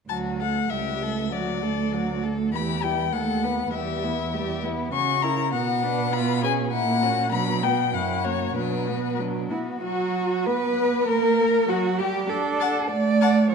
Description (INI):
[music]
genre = quick classical-period movement for string quartet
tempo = 99 BPM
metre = 2/4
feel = rubato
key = D major, B minor from 4.9 s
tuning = A4 = 435 Hz
[part]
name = rich violin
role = melody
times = 0.1-13.4 s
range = F#4 to C#6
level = -27 LUFS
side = left 9 dB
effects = none
[part]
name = warm violin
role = second line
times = 0.1-13.4 s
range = D4 to F#5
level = -31 LUFS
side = left 4 dB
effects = none
[part]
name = dark viola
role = accompaniment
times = 0.1-13.5 s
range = E3 to E4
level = -27 LUFS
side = right 3 dB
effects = none
[part]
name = rich cello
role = bass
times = 0.1-13.5 s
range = C#2 to D5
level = -27 LUFS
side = right 4 dB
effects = none
[sound]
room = wet scoring stage reverb, RT60 1.6 s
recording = dark, warm production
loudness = -22 LUFS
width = side -5 dB against mid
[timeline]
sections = 0.1-9.8 A section; 9.8-13.5 B section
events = none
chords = 0.1 D; 0.7 A7/C#; 1.3 D; 2.5 Em; 3.1 B7/D#; 3.7 Em; 4.9 F#7/C#; 5.5 Bm; 6.1 C#7/B; 6.7 F#7/A#; 7.3 Bm; 7.9 F#7; 8.6 Bm; 9.8 B5/F#; 11.1 N.C.; 12.3 D